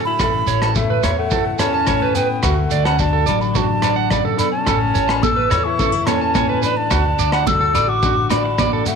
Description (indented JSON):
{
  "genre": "highlife guitar band",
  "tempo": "107 BPM",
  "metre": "4/4",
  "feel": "straight",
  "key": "A major",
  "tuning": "A4 = 445 Hz",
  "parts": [
    { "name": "wooden flute", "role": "melody", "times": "0.0-9.0 s", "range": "E5 to E6", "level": "-21 LUFS", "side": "right 1 dB", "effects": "none" },
    { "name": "nylon-string guitar", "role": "accompaniment", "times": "0.0-9.0 s", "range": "A2 to A4", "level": "-25 LUFS", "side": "left 12 dB", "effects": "none" },
    { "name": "electric guitar at the edge of break-up", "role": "arpeggios", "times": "0.0-8.9 s", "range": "F#4 to A5", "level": "-22 LUFS", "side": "right 12 dB", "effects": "slapback echo" },
    { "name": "breathy alto saxophone", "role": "second line", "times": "0.1-9.0 s", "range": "A3 to A4", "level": "-25 LUFS", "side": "left 12 dB", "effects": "none" },
    { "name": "upright bass", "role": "bass", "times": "0.2-8.8 s", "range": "A1 to E2", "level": "-23 LUFS", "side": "equal", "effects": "none" },
    { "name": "crunchy breakbeat drum kit", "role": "drums", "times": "0.2-9.0 s", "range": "hi-hat, kick drum, rim click", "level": "-24 LUFS", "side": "equal", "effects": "none" },
    { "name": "agogo bells", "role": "percussion", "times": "0.2-8.7 s", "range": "none", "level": "-29 LUFS", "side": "left 14 dB", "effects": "none" },
    { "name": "shekere", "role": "percussion", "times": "0.2-9.0 s", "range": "none", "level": "-26 LUFS", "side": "right 6 dB", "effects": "none" },
    { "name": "congas", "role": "percussion", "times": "4.7-8.7 s", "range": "none", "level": "-25 LUFS", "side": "right 12 dB", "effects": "none" }
  ],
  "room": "light reverb, studio ambience",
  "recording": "1960s-style stereo with parts hard left and right",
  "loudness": "-15 LUFS",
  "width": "side -6 dB against mid",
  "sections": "0.0-9.0 A section",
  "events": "none",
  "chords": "0.2 Aadd9; 2.4 D; 4.7 Aadd9; 6.9 D"
}